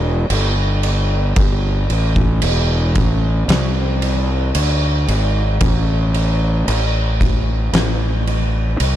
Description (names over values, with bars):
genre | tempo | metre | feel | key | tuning
stoner and doom metal | 56 BPM | 4/4 | straight | E minor | A4 = 441 Hz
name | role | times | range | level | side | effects
fuzz fingered electric bass | bass | 0.0-9.0 s | E1 to D2 | -16 LUFS | equal | overdrive
oversized low-tuned drum kit | drums | 0.3-9.0 s | crash cymbal, kick drum, snare drum | -20 LUFS | equal | none
room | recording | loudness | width
little or no reverb | none | -15 LUFS | side -12 dB against mid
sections
0.0-9.0 A section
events
none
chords
none